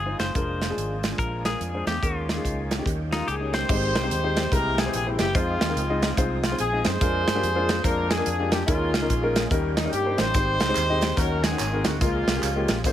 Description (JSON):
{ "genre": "uptempo gospel", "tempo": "144 BPM", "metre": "4/4", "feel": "swing 63% on 8ths", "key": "Ab major", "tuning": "A4 = 439 Hz", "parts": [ { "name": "clean electric guitar", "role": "melody", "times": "0.0-4.5 s", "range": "Eb4 to C5", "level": "-31 LUFS", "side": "left 3 dB", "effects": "spring reverb" }, { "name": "dark French horn section", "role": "sustained chords", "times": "0.0-3.7 s", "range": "G3 to F4", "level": "-42 LUFS", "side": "right 2 dB", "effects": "none" }, { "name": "overdriven tonewheel organ", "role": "sustained chords", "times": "0.0-12.9 s", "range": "Eb3 to Ab4", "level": "-36 LUFS", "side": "right 3 dB", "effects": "none" }, { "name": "fingered electric bass", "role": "bass", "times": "0.0-12.9 s", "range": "F1 to G2", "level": "-29 LUFS", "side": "equal", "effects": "none" }, { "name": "dark concert grand piano", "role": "accompaniment", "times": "0.1-12.9 s", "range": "Ab2 to Eb5", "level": "-29 LUFS", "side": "left 2 dB", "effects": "none" }, { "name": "modern studio drum kit", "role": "drums", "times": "0.2-12.9 s", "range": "crash cymbal, hi-hat, kick drum, snare drum", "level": "-26 LUFS", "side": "right 1 dB", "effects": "none" }, { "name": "mellow horn section", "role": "melody", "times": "3.1-12.8 s", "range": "Ab3 to C5", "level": "-26 LUFS", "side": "left 1 dB", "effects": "none" }, { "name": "tambourine and handclaps", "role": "percussion", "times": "10.3-12.9 s", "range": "none", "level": "-36 LUFS", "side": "right 7 dB", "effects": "none" } ], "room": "small room ambience", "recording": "none", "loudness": "-22 LUFS", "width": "side -11 dB against mid", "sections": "0.0-3.7 A section; 3.7-12.9 B section", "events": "none", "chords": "0.4 Bb7/F; 2.0 Eb7sus4; 2.9 Eb7; 3.7 Abmaj7; 4.5 C7b13; 5.3 Fm7; 7.0 Bb7/F; 8.7 Eb7sus4; 9.5 Eb7; 10.3 Abmaj7; 11.2 Ebm7; 11.6 Ab9; 12.0 Db6" }